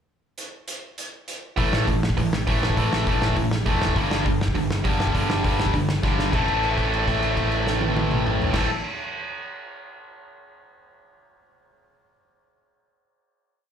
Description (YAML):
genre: punk rock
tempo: 202 BPM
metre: 4/4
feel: straight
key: A minor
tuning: A4 = 440 Hz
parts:
  - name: loose indie drum kit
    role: drums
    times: 0.4-8.6 s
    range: crash cymbal, hi-hat, kick drum, snare drum, toms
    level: -26 LUFS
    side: equal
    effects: none
  - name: tight distorted guitar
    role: riff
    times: 1.6-8.7 s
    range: G2 to A4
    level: -26 LUFS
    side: left 13 dB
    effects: distortion, slapback echo
  - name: tight distorted guitar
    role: riff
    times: 1.6-8.7 s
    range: G2 to A3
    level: -26 LUFS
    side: right 11 dB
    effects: distortion, slapback echo
  - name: overdriven picked electric bass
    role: bass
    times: 1.6-8.7 s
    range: F1 to A1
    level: -26 LUFS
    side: equal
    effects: none
room: light reverb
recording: live gig heard through the venue's PA, club reverb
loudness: -20 LUFS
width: side -8 dB against mid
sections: 0.4-1.6 pickup bar; 1.6-6.3 verse; 6.3-8.7 final chord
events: drum fill 6.0; held note 6.3-8.5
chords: 0.4 N.C.; 1.6 A5; 4.0 G5; 6.3 Am